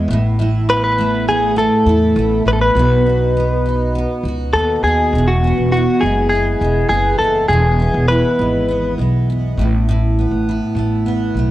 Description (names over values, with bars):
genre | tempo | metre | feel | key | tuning
acoustic pop | 101 BPM | 4/4 | straight | E major | A4 = 439 Hz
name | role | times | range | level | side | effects
picked steel-string acoustic guitar | accompaniment | 0.0-11.5 s | E2 to F#4 | -19 LUFS | right 1 dB | double-tracked left and right
upright bass | bass | 0.0-11.5 s | E1 to E2 | -17 LUFS | equal | none
direct-recorded clean electric guitar | melody | 0.7-8.9 s | F#4 to B4 | -16 LUFS | left 1 dB | cassette tape, tape echo
room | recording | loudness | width
moderate spring reverb, RT60 1.3 s, studio reverb | home recording on cassette | -13 LUFS | side -15 dB against mid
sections
0.0-5.1 A section; 5.1-11.5 B section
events
none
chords
0.1 Asus2; 2.8 B; 5.1 Eadd9; 9.6 Asus2